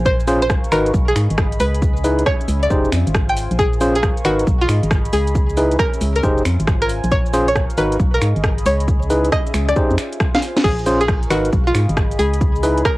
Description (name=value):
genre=UK garage, two-step garage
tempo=136 BPM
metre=4/4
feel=swing 66% on 16ths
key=unclear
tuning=A4 = 440 Hz
part: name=organ-like FM bass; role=bass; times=0.0-12.8 s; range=F1 to Ab2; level=-20 LUFS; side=equal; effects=sidechain pumping
part: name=warbly tape-like pad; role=texture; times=0.0-13.0 s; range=Db4 to Db6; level=-28 LUFS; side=left 1 dB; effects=chorus, built-in reverb, sidechain pumping, cassette tape
part: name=string-like resonator pluck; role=melody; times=0.1-13.0 s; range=F4 to G5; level=-21 LUFS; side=equal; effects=chorus, cassette tape, tape echo
part: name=electronic kick drum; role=drums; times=0.1-13.0 s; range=none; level=-19 LUFS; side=equal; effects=cassette tape
part: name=house drum kit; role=drums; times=0.1-13.0 s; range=crash cymbal, finger snaps, hi-hat, rim click, shaker, snare drum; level=-23 LUFS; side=equal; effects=cassette tape
part: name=tine electric piano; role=stabs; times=0.3-12.8 s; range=Db4 to C5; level=-19 LUFS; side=equal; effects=cassette tape
room=light reverb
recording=home recording on cassette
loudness=-14 LUFS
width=side -19 dB against mid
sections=0.0-13.0 A section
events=drum fill 10.3-10.6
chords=0.1 Bbm9; 0.7 Abm9; 1.8 Dbm9; 2.7 Fm9; 3.6 Bbm9; 4.2 Abm9; 5.4 Dbm9; 6.2 Fm9; 7.1 Bbm9; 7.8 Abm9; 8.9 Dbm9; 9.8 Fm9; 10.6 Bbm9; 11.3 Abm9; 12.4 Dbm9